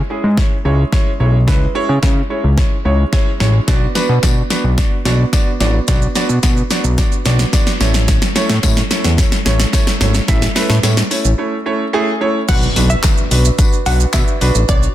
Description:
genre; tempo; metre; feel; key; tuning
dance-pop; 109 BPM; 4/4; straight; B dorian; A4 = 440 Hz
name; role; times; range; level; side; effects
fat analog bass; bass; 0.0-14.9 s; G#1 to C#3; -14 LUFS; equal; sidechain pumping
warm concert grand piano; accompaniment; 0.1-14.9 s; G#3 to E5; -20 LUFS; right 2 dB; sidechain pumping
deep house drum kit; drums; 0.4-14.9 s; crash cymbal, handclaps, hi-hat, kick drum, shaker, snare drum; -15 LUFS; equal; soft clipping on snare
tambourine; percussion; 4.0-14.5 s; none; -29 LUFS; left 11 dB; none
wide unison pluck; melody; 12.5-14.8 s; D5 to F#5; -23 LUFS; equal; sidechain pumping, dub echo
impact; sound effects; 12.6-14.7 s; none; -25 LUFS; equal; none
room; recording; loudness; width
light reverb, digital ambience; dense, heavily limited modern master; -12 LUFS; side -13 dB against mid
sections
0.0-12.5 A section; 12.5-14.9 B section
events
build-up 0.0-12.5; drum fill 0.0-11.4; break 11.4-12.5; drop 12.5-14.9; impact 12.5-14.7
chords
0.0 C#m; 3.7 Bm; 7.8 A; 12.5 Bm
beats
0.38 0.93 | 1.48 2.03 2.58 3.13 | 3.68 4.23 4.78 5.33 | 5.88 6.43 6.98 7.53 | 8.08 8.63 9.18 9.73 | 10.29 10.84 11.39 11.94 | 12.49 13.04 13.59 14.14 | 14.69

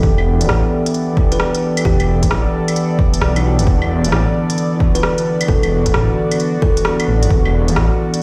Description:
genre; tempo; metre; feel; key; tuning
future garage; 132 BPM; 4/4; swing 65% on 16ths; E minor; A4 = 441 Hz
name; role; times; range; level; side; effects
bell-like tine electric piano; accompaniment; 0.0-8.2 s; E3 to G4; -23 LUFS; equal; vintage 12-bit sampler grit, sidechain pumping, tape echo
warbly tape-like pad; sustained chords; 0.0-8.2 s; D3 to D5; -26 LUFS; equal; chorus, built-in reverb, sidechain pumping
swelling detuned saw bass; bass; 0.0-7.9 s; D1 to B1; -18 LUFS; equal; tube saturation
electronic kick drum; drums; 0.0-7.4 s; none; -19 LUFS; equal; overdrive
organic electronic drum kit; drums; 0.2-8.2 s; claves, hi-hat, rim click; -25 LUFS; equal; none
kalimba; melody; 1.3-7.3 s; G4 to B4; -25 LUFS; equal; tape echo
room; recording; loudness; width
moderate recital hall reverb, RT60 1.7 s; played on a big sound system in a bare room, stone room reverb; -16 LUFS; mono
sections
0.0-8.2 A section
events
none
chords
0.0 Em7; 3.7 Bm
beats
| 0.03 0.49 0.94 1.40 | 1.85 2.31 2.76 3.21 | 3.67 4.12 4.58 5.03 | 5.49 5.94 6.40 6.85 | 7.31 7.76 8.21

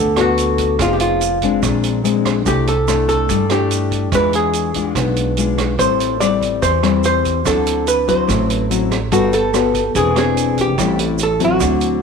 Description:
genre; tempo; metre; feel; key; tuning
bossa nova; 144 BPM; 4/4; straight; unclear; A4 = 440 Hz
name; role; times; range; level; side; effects
archtop guitar, miked and amplified; melody; 0.0-12.0 s; F4 to D5; -18 LUFS; right 2 dB; slapback echo
nylon-string guitar; accompaniment; 0.0-12.0 s; A2 to A4; -18 LUFS; left 10 dB; none
upright bass; bass; 0.0-12.0 s; E1 to G2; -21 LUFS; right 3 dB; none
vintage drum kit; drums; 0.2-11.9 s; hi-hat, kick drum, rim click; -24 LUFS; right 9 dB; none
tube shaker; percussion; 0.2-12.0 s; none; -31 LUFS; right 18 dB; none
room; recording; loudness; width
light reverb, small room ambience; 1960s-style stereo with parts hard left and right; -14 LUFS; side -5 dB against mid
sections
0.0-12.0 A section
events
none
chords
0.0 Gmaj9 (rootless); 0.8 Fm7; 1.6 Bb9; 2.5 C69; 4.1 E7b9; 5.8 Am7; 7.5 D9; 9.1 Gmaj9; 10.0 Eaug7; 10.8 Am7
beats
0.38 | 0.79 1.21 1.63 2.04 | 2.46 2.88 3.29 3.71 | 4.12 4.54 4.96 5.37 | 5.79 6.21 6.62 7.04 | 7.46 7.87 8.29 8.71 | 9.12 9.54 9.95 10.37 | 10.79 11.20 11.62

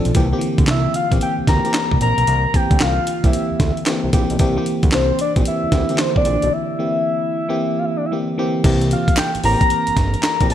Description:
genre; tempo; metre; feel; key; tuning
R&B, new jack swing; 113 BPM; 4/4; swing 64% on 16ths; unclear; A4 = 440 Hz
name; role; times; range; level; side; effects
FM electric piano; accompaniment; 0.0-10.5 s; D3 to A4; -22 LUFS; left 1 dB; chorus
fat analog bass; bass; 0.1-10.5 s; G1 to D2; -21 LUFS; equal; none
breakbeat sampler-style drum kit; drums; 0.1-10.5 s; crash cymbal, handclaps, hi-hat, kick drum, snare drum; -18 LUFS; equal; none
soft octave-layered synth lead; melody; 0.7-10.5 s; C5 to Bb5; -20 LUFS; left 1 dB; chorus, phaser
group handclap; percussion; 9.2-10.4 s; none; -34 LUFS; right 5 dB; none
room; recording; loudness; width
light reverb; none; -15 LUFS; side -10 dB against mid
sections
0.0-8.6 A section; 8.6-10.5 B section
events
break 6.5-8.6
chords
0.1 C7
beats
| 0.15 0.68 1.21 1.74 | 2.27 2.80 3.33 3.87 | 4.40 4.93 5.46 5.99 | 6.52 7.05 7.58 8.11 | 8.64 9.18 9.71 10.24

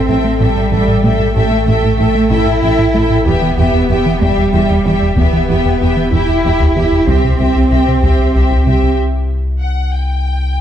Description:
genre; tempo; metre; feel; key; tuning
cinematic, hybrid orchestral and electronic film score; 63 BPM (dotted quarters); 6/8; straight; A minor; A4 = 442 Hz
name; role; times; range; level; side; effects
rich symphonic violin section; melody; 0.0-10.6 s; F#5 to G5; -24 LUFS; left 6 dB; none
rich symphonic violin section; second line; 0.0-9.0 s; E5; -22 LUFS; left 2 dB; none
warm symphonic viola section; accompaniment; 0.0-9.0 s; G4 to A4; -20 LUFS; right 2 dB; none
rubbery square bass; riff; 0.0-8.9 s; C2 to A3; -17 LUFS; right 1 dB; none
punchy sub bass; bass; 0.0-10.6 s; E1 to C2; -18 LUFS; left 1 dB; none
rich symphonic cello section; bass; 0.0-9.0 s; G3 to E4; -16 LUFS; right 2 dB; none
rich studio double bass section; bass; 0.1-8.7 s; A1 to E2; -20 LUFS; right 2 dB; none
taiko ensemble; drums; 3.3-8.9 s; none; -18 LUFS; left 1 dB; none
room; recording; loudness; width
moderate scoring stage reverb, RT60 1.7 s; none; -11 LUFS; side -10 dB against mid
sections
0.0-10.6 A section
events
break 9.0-10.6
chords
0.0 A7(no3); 3.3 Em; 7.1 C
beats
0.41 | 1.36 2.31 | 3.26 4.21 | 5.17 6.12 | 7.07 8.02 | 8.98 9.93

